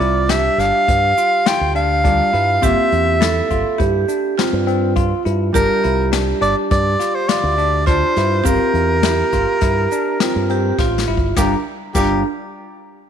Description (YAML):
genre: progressive instrumental, band music in an uneven meter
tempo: 103 BPM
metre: 5/4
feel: straight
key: G dorian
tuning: A4 = 440 Hz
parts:
  - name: breathy soprano saxophone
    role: melody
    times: 0.0-12.2 s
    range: G4 to G5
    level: -18 LUFS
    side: equal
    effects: none
  - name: vibraphone with medium hard mallets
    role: second line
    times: 0.0-12.2 s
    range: D4 to A4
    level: -22 LUFS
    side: right 10 dB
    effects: none
  - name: hollow-body jazz guitar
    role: accompaniment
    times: 0.0-12.2 s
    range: G3 to Bb4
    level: -26 LUFS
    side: left 4 dB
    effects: none
  - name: bell-like tine electric piano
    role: arpeggios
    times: 0.0-12.2 s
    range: G3 to F4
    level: -24 LUFS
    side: left 10 dB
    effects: none
  - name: fingered electric bass with an envelope filter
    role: bass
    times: 0.0-12.2 s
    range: G1 to G2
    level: -20 LUFS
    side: equal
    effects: none
  - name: jazz brush drum kit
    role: drums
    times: 0.0-12.1 s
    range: crash cymbal, hi-hat, kick drum, snare drum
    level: -21 LUFS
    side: left 3 dB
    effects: none
  - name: tube shaker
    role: percussion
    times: 0.6-12.2 s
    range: none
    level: -32 LUFS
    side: right 15 dB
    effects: none
room: moderate echo chamber reverb, RT60 2.1 s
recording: 1960s-style stereo with parts hard left and right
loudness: -14 LUFS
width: side -8 dB against mid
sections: 0.0-11.4 A section; 11.4-13.1 B section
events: drum fill 10.8-11.4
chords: 0.0 Gm7; 8.5 C7sus4/G; 11.4 Gm7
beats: 0.30 0.88 1.47 2.05 | 2.63 3.22 3.80 4.38 4.97 | 5.55 6.13 6.71 7.30 7.88 | 8.46 9.04 9.62 10.21 10.79 | 11.37 11.95